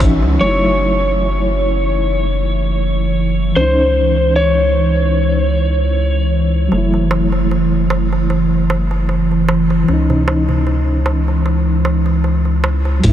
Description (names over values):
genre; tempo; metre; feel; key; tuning
trip hop; 76 BPM; 4/4; swing 54% on 16ths; C# minor; A4 = 441 Hz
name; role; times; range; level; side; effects
mellow reed electric piano; accompaniment; 0.0-13.1 s; E3 to F#4; -21 LUFS; equal; fast tremolo, tape echo
deep dark ambient pad; sustained chords; 0.0-13.1 s; E3 to E6; -20 LUFS; right 2 dB; chorus, built-in reverb, vintage 12-bit sampler grit
round analog bass; bass; 0.0-13.1 s; F#1 to C#2; -16 LUFS; equal; tube saturation
trip hop sampler-style drum kit; drums; 0.0-0.2, 13.0-13.1 s; hi-hat, kick drum; -21 LUFS; equal; none
darbuka; percussion; 0.0-0.4, 6.7-13.0 s; none; -24 LUFS; right 2 dB; none
electric slide guitar; melody; 0.4-6.3 s; B#4 to C#5; -18 LUFS; equal; dub echo
sub drop; sound effects; 13.0-13.1 s; none; -10 LUFS; equal; none
room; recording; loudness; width
moderate huge ambient reverb, RT60 7.5 s; dreamy mix soaked in reverb; -13 LUFS; side -11 dB against mid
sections
0.4-13.0 A section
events
filter sweep on ambient pad 0.4-13.0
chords
0.4 F#m7; 3.6 C#madd9; 6.7 F#m7; 9.9 C#madd9